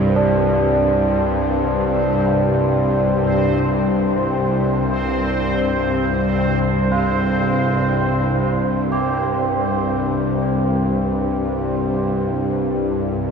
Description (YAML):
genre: dark ambient drone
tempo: free time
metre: none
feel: none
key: unclear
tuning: A4 = 440 Hz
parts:
  - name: bowed-like drone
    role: drone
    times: 0.0-13.3 s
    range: C2 to G2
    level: -18 LUFS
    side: equal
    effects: built-in reverb
  - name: bubbling stepped-filter texture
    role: texture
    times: 0.0-13.3 s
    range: C4 to C5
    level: -23 LUFS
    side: equal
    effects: chorus, built-in reverb
  - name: tubular bells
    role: arpeggios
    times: 0.2-13.3 s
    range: D4 to G4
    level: -25 LUFS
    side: right 2 dB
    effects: diffuse ambient delay
room: wet cathedral reverb, RT60 6.2 s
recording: dark, warm production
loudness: -16 LUFS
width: side -6 dB against mid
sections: 0.0-13.3 A section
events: none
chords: 0.0 Csus2